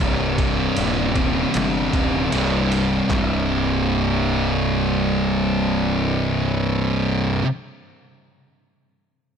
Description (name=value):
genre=stoner and doom metal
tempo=77 BPM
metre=4/4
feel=straight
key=unclear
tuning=A4 = 440 Hz
part: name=thick fuzz guitar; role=riff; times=0.0-7.5 s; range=C2 to C3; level=-23 LUFS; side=left 10 dB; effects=distortion
part: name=thick fuzz guitar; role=riff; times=0.0-7.5 s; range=C2 to C3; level=-22 LUFS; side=right 9 dB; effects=distortion
part: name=fuzz picked electric bass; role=bass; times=0.0-7.4 s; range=C1 to G1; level=-24 LUFS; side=equal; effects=overdrive
part: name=trip hop sampler-style drum kit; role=drums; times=0.4-3.3 s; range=handclaps, kick drum, ride cymbal, snare drum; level=-26 LUFS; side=equal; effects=none
room=little or no reverb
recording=none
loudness=-18 LUFS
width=side -7 dB against mid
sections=0.0-3.1 A section; 3.1-6.2 B section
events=kick and snare drop out 2.7-3.1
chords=0.0 Cm; 3.1 C5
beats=0.76 1.54 2.32 | 3.10 3.88 4.65 5.43